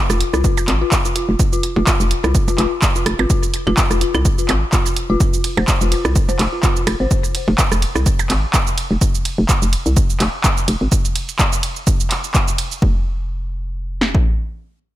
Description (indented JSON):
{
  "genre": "minimal techno",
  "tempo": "126 BPM",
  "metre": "4/4",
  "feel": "swing 56% on 16ths",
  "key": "F minor",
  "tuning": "A4 = 440 Hz",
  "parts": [
    { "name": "dark detuned synth bell", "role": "riff", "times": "0.1-7.0 s", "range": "F4 to C5", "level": "-24 LUFS", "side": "left 3 dB", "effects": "chorus, tremolo, sidechain pumping, ping-pong delay" },
    { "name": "hollow knocking FM bass", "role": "bass", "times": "0.1-14.2 s", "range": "F1 to C2", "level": "-18 LUFS", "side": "equal", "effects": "sidechain pumping" },
    { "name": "punchy analog drum machine", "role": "drums", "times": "0.1-12.8 s", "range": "handclaps, hi-hat, ride cymbal, shaker", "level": "-21 LUFS", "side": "right 1 dB", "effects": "none" },
    { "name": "electronic rim click, percussion blips and claves", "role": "percussion", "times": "0.1-8.3 s", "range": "none", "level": "-25 LUFS", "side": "right 4 dB", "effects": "overdrive, ping-pong delay" },
    { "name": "punchy analog drum machine", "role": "drums", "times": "0.4-14.2 s", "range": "kick drum, snare drum", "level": "-17 LUFS", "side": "equal", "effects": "none" }
  ],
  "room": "digital ambience",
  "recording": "none",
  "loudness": "-15 LUFS",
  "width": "side -14 dB against mid",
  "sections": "0.0-12.8 A section; 12.8-15.0 B section",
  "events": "drop 0.0-12.8",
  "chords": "0.0 F5; 12.8 N.C.",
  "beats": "0.44 0.92 | 1.39 1.87 2.35 2.82 | 3.30 3.77 4.25 4.73 | 5.20 5.68 6.16 6.63 | 7.11 7.58 8.06 8.54 | 9.01 9.49 9.96 10.44 | 10.92 11.39 11.87 12.35 | 12.82 13.30 13.78"
}